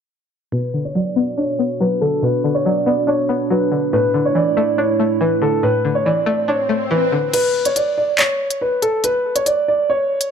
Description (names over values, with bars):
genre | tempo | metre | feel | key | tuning
hip hop, drill | 141 BPM | 4/4 | half-time | B minor | A4 = 440 Hz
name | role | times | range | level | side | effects
dark grand piano | melody | 0.5-10.3 s | A4 to D5 | -18 LUFS | equal | low-pass filter, ping-pong delay
string-like resonator pluck | accompaniment | 0.5-7.3 s | A2 to D4 | -20 LUFS | left 2 dB | chorus, low-pass filter
warbly tape-like pad | sustained chords | 0.5-7.3 s | A2 to F#4 | -23 LUFS | right 5 dB | chorus, built-in reverb, low-pass filter
swell | sound effects | 6.2-7.3 s | none | -26 LUFS | equal | none
drill drum kit | drums | 7.3-10.3 s | crash cymbal, handclaps, hi-hat | -20 LUFS | left 1 dB | none
room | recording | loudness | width
light reverb, digital ambience | none | -15 LUFS | side -7 dB against mid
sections
0.5-7.3 A section; 7.3-10.3 B section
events
filter sweep 0.5-7.3; swell 6.2-7.3; kick muted 7.3-10.3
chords
0.5 Bm; 3.9 Asus4; 7.3 N.C.